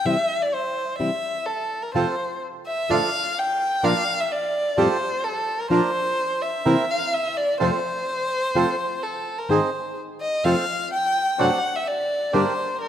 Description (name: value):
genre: tango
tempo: 127 BPM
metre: 4/4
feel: rubato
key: F major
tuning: A4 = 440 Hz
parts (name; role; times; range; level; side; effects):
- warm violin; second line; 0.0-12.9 s; A4 to G5; -23 LUFS; left 1 dB; none
- nylon-string guitar; accompaniment; 0.1-12.4 s; F2 to Ab4; -25 LUFS; left 2 dB; none
- bandoneon; stabs; 1.9-12.5 s; F3 to Bb4; -27 LUFS; right 6 dB; none
room: moderate plate reverb, RT60 2.7 s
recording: rough home demo mix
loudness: -21 LUFS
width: side -10 dB against mid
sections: 0.0-12.9 A section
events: violin solo 0.0-12.9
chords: 0.1 C; 2.0 F; 2.9 Dm/F; 3.8 Bb; 4.8 Fadd9; 5.7 Bb; 6.7 C7; 7.6 F; 9.5 Ab; 10.5 F; 11.4 D7/F#; 12.3 Gm